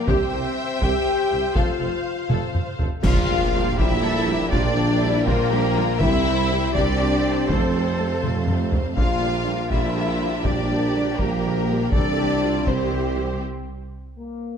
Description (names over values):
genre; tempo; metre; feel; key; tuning
cinematic, epic orchestral film score; 81 BPM (dotted quarters); 6/8; straight; Bb lydian; A4 = 440 Hz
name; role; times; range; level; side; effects
warm symphonic violin section; melody; 0.0-13.4 s; Bb4 to G5; -28 LUFS; left 3 dB; none
warm symphonic violin section; second line; 0.0-13.4 s; Bb3 to G5; -29 LUFS; left 2 dB; none
rich symphonic viola section; accompaniment; 0.0-13.2 s; C3 to C5; -31 LUFS; right 2 dB; none
dark French horn section; sustained chords; 0.0-14.6 s; Bb3 to G4; -27 LUFS; left 4 dB; none
clear symphonic double bass section; bass; 0.1-13.3 s; F1 to F2; -27 LUFS; right 3 dB; none
dark symphonic cello section; bass; 0.1-13.4 s; F2 to A4; -31 LUFS; right 2 dB; none
warm tuba; bass; 0.1-13.3 s; F1 to C2; -29 LUFS; right 4 dB; none
taiko ensemble; drums; 0.1-13.1 s; none; -24 LUFS; equal; none
clear symphonic string section; sustained chords; 3.0-13.4 s; G3 to G5; -30 LUFS; equal; none
clash cymbals and concert bass drum; percussion; 3.0-4.0 s; none; -27 LUFS; equal; none
impact; sound effects; 3.0-4.5 s; none; barely audible; none; none
room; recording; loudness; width
moderate scoring stage reverb, RT60 1.6 s; dark, warm production; -19 LUFS; side -7 dB against mid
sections
0.0-3.0 A section; 3.0-14.6 A section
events
drum fill 2.3-3.0, 8.2-9.0; band accent 3.0-3.5; impact 3.0-4.5; break 13.4-14.6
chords
0.1 C; 1.6 F; 3.0 Bb6; 6.0 C; 7.5 F; 9.0 Bb6; 11.9 C; 13.4 N.C.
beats
| 0.08 0.82 | 1.56 2.30 | 3.04 3.78 | 4.52 5.26 | 6.00 6.74 | 7.48 8.22 | 8.96 9.71 | 10.45 11.19 | 11.93 12.67 | 13.41 14.15